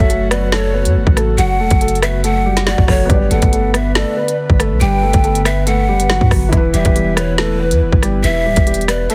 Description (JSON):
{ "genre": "hip hop, drill", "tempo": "140 BPM", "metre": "4/4", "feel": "half-time", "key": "F# phrygian", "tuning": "A4 = 440 Hz", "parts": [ { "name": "dark grand piano", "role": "melody", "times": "0.0-9.1 s", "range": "E3 to B4", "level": "-22 LUFS", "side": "equal", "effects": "none" }, { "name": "breathy mellow large pan pipes", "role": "second line", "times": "0.0-9.1 s", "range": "B4 to G5", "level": "-23 LUFS", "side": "equal", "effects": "delay" }, { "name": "felt-muted upright piano", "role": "accompaniment", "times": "0.0-9.1 s", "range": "E3 to D5", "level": "-27 LUFS", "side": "equal", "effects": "none" }, { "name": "airy breathy pad", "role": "sustained chords", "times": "0.0-9.1 s", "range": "C#3 to B4", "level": "-27 LUFS", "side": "equal", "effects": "chorus" }, { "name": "long sustained 808-style bass", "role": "bass", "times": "0.0-9.1 s", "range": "D1 to G2", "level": "-19 LUFS", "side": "equal", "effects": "none" }, { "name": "drill drum kit", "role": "drums", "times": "0.0-9.1 s", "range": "hi-hat, kick drum, rim click, snare drum", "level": "-17 LUFS", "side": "equal", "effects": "none" } ], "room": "little or no reverb", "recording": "heavily compressed radio sound", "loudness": "-14 LUFS", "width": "mono", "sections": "0.0-9.1 A section", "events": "none", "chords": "0.0 F#m; 3.1 G; 6.5 Em" }